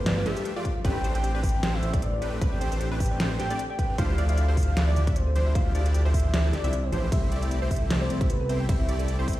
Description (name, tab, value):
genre	future bass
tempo	153 BPM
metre	4/4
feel	swing 55% on 16ths, half-time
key	A minor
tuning	A4 = 439 Hz
part	warm velvety synth lead	melody	0.0-9.4 s	F4 to G5	-33 LUFS	equal	chorus, tremolo, sidechain pumping, digital delay
part	thumb-piano-like synth pluck	arpeggios	0.0-9.3 s	G4 to G5	-42 LUFS	right 2 dB	chorus, sidechain pumping, digital delay
part	wide unison pluck	arpeggios	0.0-9.4 s	B4 to E5	-41 LUFS	right 1 dB	none
part	supersaw chords	riff	0.0-9.4 s	F3 to E5	-33 LUFS	equal	sidechain pumping
part	fat analog bass	bass	0.0-9.4 s	G1 to D2	-25 LUFS	equal	sidechain pumping
part	dubstep drum kit	drums	0.1-9.4 s	hi-hat, ride cymbal, snare drum	-32 LUFS	right 1 dB	none
part	electronic kick drum	drums	0.7-9.4 s	none	-26 LUFS	equal	none
room	little or no reverb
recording	played on a big sound system in a bare room, stone room reverb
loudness	-23 LUFS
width	side -15 dB against mid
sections	0.0-9.4 A section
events	break 6.7-7.1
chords	0.0 G7sus2; 0.8 Am11; 4.0 Dm11; 7.1 C6